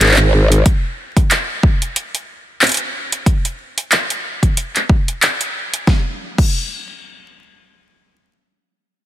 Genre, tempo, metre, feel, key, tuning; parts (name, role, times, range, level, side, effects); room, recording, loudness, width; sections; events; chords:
glitch hop; 92 BPM; 4/4; swing 56% on 16ths; A4 = 440 Hz
growl bass; bass; 0.0-0.6 s; Ab1; -11 LUFS; equal; chorus, tube saturation
pop drum kit; drums; 0.0-6.6 s; crash cymbal, handclaps, hi-hat, snare drum; -17 LUFS; equal; overdrive
electronic kick drum; drums; 0.7-6.6 s; -14 LUFS; equal; overdrive
light reverb; dense, heavily limited modern master, vinyl crackle; -14 LUFS; side -13 dB against mid
0.0-5.9 A section; 5.9-8.5 B section